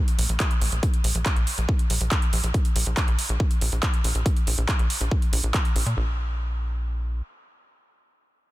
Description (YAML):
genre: uplifting trance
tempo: 140 BPM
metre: 4/4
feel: straight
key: unclear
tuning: A4 = 440 Hz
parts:
  - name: big-room dance drum kit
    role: drums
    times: 0.1-6.0 s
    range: handclaps, hi-hat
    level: -28 LUFS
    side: right 1 dB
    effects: overdrive
  - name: tight sequencer bass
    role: bass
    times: 0.2-7.2 s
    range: Bb1 to Bb2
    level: -25 LUFS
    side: equal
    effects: sidechain pumping
  - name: electronic kick drum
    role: drums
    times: 0.4-5.6 s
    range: none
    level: -22 LUFS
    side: equal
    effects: overdrive
room: digital ambience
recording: dense, heavily limited modern master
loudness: -21 LUFS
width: side -17 dB against mid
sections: 0.0-6.0 A section; 6.0-8.5 B section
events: none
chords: none